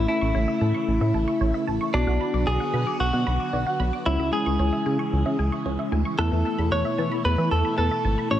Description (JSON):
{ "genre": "pop", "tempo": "113 BPM", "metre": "4/4", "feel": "straight", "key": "unclear", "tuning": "A4 = 440 Hz", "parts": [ { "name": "direct-recorded clean electric guitar", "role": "melody", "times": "0.0-8.4 s", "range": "D4 to C#5", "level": "-27 LUFS", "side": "equal", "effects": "dub echo" }, { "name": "tine electric piano", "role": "accompaniment", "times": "0.0-8.4 s", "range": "G#3 to F#4", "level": "-28 LUFS", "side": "left 1 dB", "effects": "fast stereo tremolo, dub echo" }, { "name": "phased string machine", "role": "sustained chords", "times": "0.0-8.4 s", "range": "B2 to F#4", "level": "-32 LUFS", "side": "equal", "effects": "ensemble chorus, phaser" }, { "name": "resonant blip pluck", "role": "arpeggios", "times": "0.0-8.4 s", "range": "B4 to D6", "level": "-34 LUFS", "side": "right 1 dB", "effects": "chorus, phaser, dub echo" }, { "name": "chorused synth bass", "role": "bass", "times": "0.0-8.4 s", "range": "G#1 to E3", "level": "-24 LUFS", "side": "equal", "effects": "none" } ], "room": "light reverb, digital ambience", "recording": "echo-heavy mix", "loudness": "-21 LUFS", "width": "side -11 dB against mid", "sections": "0.0-8.4 A section", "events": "none", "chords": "0.0 A; 1.9 Bm; 4.1 C#m; 6.2 Esus4" }